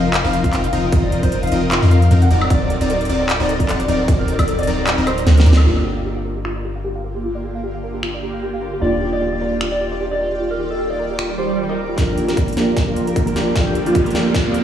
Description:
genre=future bass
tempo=152 BPM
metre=4/4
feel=swing 56% on 16ths, half-time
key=G minor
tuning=A4 = 440 Hz
part: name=mellow electric guitar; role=melody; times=0.0-5.6, 8.8-14.6 s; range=F4 to F#5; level=-24 LUFS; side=equal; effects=sidechain pumping, tape echo
part: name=soft round pluck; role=arpeggios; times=0.0-11.9 s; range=F4 to G5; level=-28 LUFS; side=right 1 dB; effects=lush chorus, sidechain pumping, dub echo
part: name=supersaw stab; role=riff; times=0.0-5.6, 12.0-14.6 s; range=F3 to G5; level=-21 LUFS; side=left 1 dB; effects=sidechain pumping, low-pass filter
part: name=long sustained 808-style bass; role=bass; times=0.0-12.0 s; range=D1 to F2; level=-19 LUFS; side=equal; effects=sidechain pumping
part: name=big-room dance drum kit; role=drums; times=0.1-14.6 s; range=crash cymbal, finger snaps, handclaps, hi-hat, snare drum, woodblock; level=-24 LUFS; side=equal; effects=high-pass filter on hats, low-pass filter on hats, studio reverb, high-pass filter on perc, low-pass filter on perc, high-pass filter on snare, low-pass filter on snare, high-pass filter on cymbals, low-pass filter on cymbals
part: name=electronic kick drum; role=drums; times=0.4-4.5, 12.0-14.4 s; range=none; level=-19 LUFS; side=equal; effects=studio reverb
part: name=felt-muted upright piano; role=accompaniment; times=5.6-14.6 s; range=Bb3 to Bb4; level=-26 LUFS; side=right 1 dB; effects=sidechain pumping, dub echo
part: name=shimmering ambient pad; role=sustained chords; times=6.6-14.6 s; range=D3 to D5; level=-28 LUFS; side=equal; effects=chorus, built-in reverb, phaser, sidechain pumping
part: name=swell and riser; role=sound effects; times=11.3-14.6 s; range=none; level=-26 LUFS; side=right 4 dB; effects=none
room=moderate lush hall reverb, RT60 2.0 s, digital ambience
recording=played on a big sound system in a bare room, large studio reverb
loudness=-15 LUFS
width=side -10 dB against mid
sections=0.0-5.7 A section; 5.7-12.0 B section; 12.0-14.6 C section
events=drop 0.0-5.7; drum fill 5.3-5.7, 12.0-14.6; band accent 5.5; filter sweep on drum 5.7-12.0; filter sweep on synth arpeggio sound 5.7-12.0; swell 11.3-12.0; build-up 12.0-14.6; riser 12.0-14.6; filter sweep on supersaw synth 12.0-14.6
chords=0.0 F7sus4; 2.3 D7b9b13; 5.7 Gm7; 8.8 Ebmaj9; 12.0 Gm7

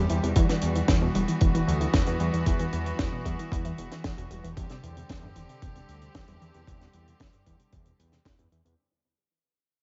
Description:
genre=italo disco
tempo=114 BPM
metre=4/4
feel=straight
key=unclear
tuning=A4 = 441 Hz
part: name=rich chamber string section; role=sustained chords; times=0.0-8.7 s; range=D3 to G4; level=-36 LUFS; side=equal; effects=none
part: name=analog pluck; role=arpeggios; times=0.0-8.7 s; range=C2 to G3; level=-35 LUFS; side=equal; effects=chorus, tape echo
part: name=fat analog bass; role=bass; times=0.0-8.7 s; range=E1 to E2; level=-33 LUFS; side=equal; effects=tube saturation
part: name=tight funk drum kit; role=drums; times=0.1-8.8 s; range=hi-hat, snare drum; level=-35 LUFS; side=equal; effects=none
part: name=electronic kick drum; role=drums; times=0.4-8.4 s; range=none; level=-29 LUFS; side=equal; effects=overdrive
room=studio ambience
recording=vinyl crackle, nothing above 7.6 kHz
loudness=-26 LUFS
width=mono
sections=0.0-8.8 A section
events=fade-out 0.0-8.8; filter sweep on synth arpeggio sound 0.0-8.8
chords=0.4 Emadd9; 4.6 Csus2/E

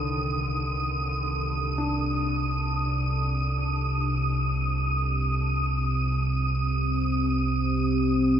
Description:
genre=dark ambient drone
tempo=free time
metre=none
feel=none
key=C minor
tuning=A4 = 440 Hz
part: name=warm grand piano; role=arpeggios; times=0.0-8.4 s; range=Eb2 to D4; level=-35 LUFS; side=left 2 dB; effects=tape echo, shimmer reverb
part: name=deep rumbling drone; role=drone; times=0.0-8.4 s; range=C2 to C3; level=-26 LUFS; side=equal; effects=built-in reverb, lush chorus
part: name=wind-like tuned noise texture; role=texture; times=0.0-8.4 s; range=Eb6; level=-30 LUFS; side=right 2 dB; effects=built-in reverb, shimmer reverb
part: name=deep dark ambient pad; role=sustained chords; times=6.4-8.4 s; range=C4 to C5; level=-26 LUFS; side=equal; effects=chorus, built-in reverb
room=wet huge ambient reverb, RT60 8.2 s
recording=none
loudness=-24 LUFS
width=side -9 dB against mid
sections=0.0-8.4 A section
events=fade-out on grand piano 0.0-8.4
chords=0.0 Cmadd9

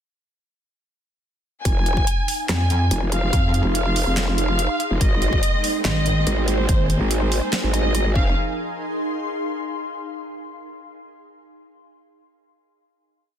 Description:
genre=heavy wobble dubstep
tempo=143 BPM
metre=4/4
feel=half-time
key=F minor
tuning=A4 = 438 Hz
part: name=dark studio violin section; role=melody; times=1.7-8.3 s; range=C5 to Ab5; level=-26 LUFS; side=equal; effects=vintage 12-bit sampler grit, ping-pong delay
part: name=growl bass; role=bass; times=1.7-8.4 s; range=F1 to Ab1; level=-21 LUFS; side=equal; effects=chorus, overdrive
part: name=dubstep drum kit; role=drums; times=1.7-8.0 s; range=handclaps, hi-hat, snare drum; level=-26 LUFS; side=right 1 dB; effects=studio reverb
part: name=electronic kick drum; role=drums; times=1.7-8.2 s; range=none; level=-20 LUFS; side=equal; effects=studio reverb
part: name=ethereal airy pad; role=texture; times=2.3-10.0 s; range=Eb4 to C6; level=-28 LUFS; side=right 2 dB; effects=ensemble chorus, built-in reverb, sidechain pumping
part: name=metallic wobble bass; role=bass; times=2.5-7.0 s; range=Ab1 to F2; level=-20 LUFS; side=equal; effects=chorus, overdrive
part: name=rich chamber string section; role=sustained chords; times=5.0-8.4 s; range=F3 to Ab4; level=-32 LUFS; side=left 1 dB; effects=sidechain pumping
room=little or no reverb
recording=dense, heavily limited modern master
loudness=-18 LUFS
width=side -9 dB against mid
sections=1.7-8.4 drop; 8.4-10.0 final chord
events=drop 1.7-8.4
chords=1.7 Fm7; 5.0 Abadd9; 8.2 Fm7

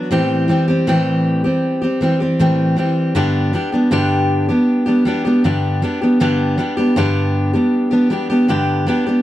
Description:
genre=pop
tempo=79 BPM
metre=4/4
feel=straight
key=G major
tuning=A4 = 438 Hz
part: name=fingerpicked steel-string acoustic guitar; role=solo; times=0.0-9.2 s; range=G2 to G4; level=-14 LUFS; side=equal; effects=none
room=moderate booth ambience, RT60 0.2 s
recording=dry, close 1970s-style studio recording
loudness=-14 LUFS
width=side -14 dB against mid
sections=0.0-9.2 A section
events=none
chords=0.1 Am7; 3.2 G

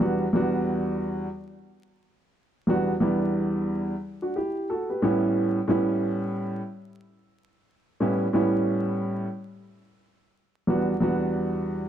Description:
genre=hip hop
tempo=90 BPM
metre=4/4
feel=swing 59% on 16ths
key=E dorian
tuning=A4 = 440 Hz
part: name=dark upright piano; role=solo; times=0.0-11.9 s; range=E2 to B4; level=-23 LUFS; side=right 1 dB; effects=none
room=moderate echo chamber reverb, RT60 1.8 s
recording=dark, warm production, vinyl crackle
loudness=-23 LUFS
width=side -10 dB against mid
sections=0.0-11.9 A section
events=none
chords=0.0 Em7; 5.0 A9; 10.7 Em7

